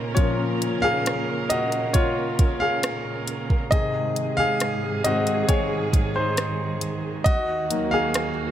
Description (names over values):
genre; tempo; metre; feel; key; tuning
pop ballad; 68 BPM; 4/4; straight; Bb minor; A4 = 443 Hz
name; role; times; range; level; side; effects
warm concert grand piano; accompaniment; 0.0-8.5 s; Ab2 to F5; -23 LUFS; left 2 dB; none
warm symphonic string section; sustained chords; 0.0-8.5 s; Eb2 to Bb4; -28 LUFS; right 3 dB; none
smooth R&B drum kit; drums; 0.2-8.4 s; hi-hat, kick drum, rim click; -22 LUFS; equal; none
room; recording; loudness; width
light reverb, small room ambience; none; -21 LUFS; side -11 dB against mid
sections
0.0-8.5 A section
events
grand piano solo 0.0-8.5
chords
0.0 Bbm; 3.7 Ab; 7.3 Ebm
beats
| 0.18 1.07 1.95 2.84 | 3.72 4.60 5.49 6.37 | 7.25 8.14